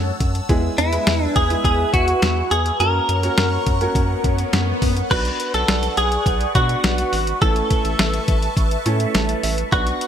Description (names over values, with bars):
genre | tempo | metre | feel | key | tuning
synth-pop | 104 BPM | 4/4 | straight | B dorian | A4 = 440 Hz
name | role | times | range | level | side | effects
direct-recorded clean electric guitar | melody | 0.0-10.1 s | E4 to C#5 | -21 LUFS | equal | ensemble chorus
warm baby grand piano | accompaniment | 0.0-10.1 s | G#3 to A5 | -26 LUFS | right 3 dB | none
phased analog pad | sustained chords | 0.0-10.1 s | D4 to E6 | -27 LUFS | right 1 dB | phaser, chorus
rubbery square bass | bass | 0.0-9.9 s | G#1 to B2 | -22 LUFS | equal | none
detuned 8-bit digital drum machine | drums | 0.2-10.1 s | crash cymbal, hi-hat, kick drum, snare drum | -21 LUFS | equal | none
swell | sound effects | 3.7-5.1 s | none | -30 LUFS | left 3 dB | none
room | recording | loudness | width
light reverb | bright 1980s-style digital production | -16 LUFS | side -9 dB against mid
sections
0.0-5.1 A section; 5.1-10.1 B section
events
swell 3.7-5.1; grand piano fill 8.9-9.7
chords
0.5 E; 2.8 F#; 5.1 Bmadd9; 7.4 Aadd9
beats
| 0.49 1.07 1.65 2.22 | 2.80 3.38 3.96 4.53 | 5.11 5.69 6.26 6.84 | 7.42 7.99 8.57 9.15 | 9.72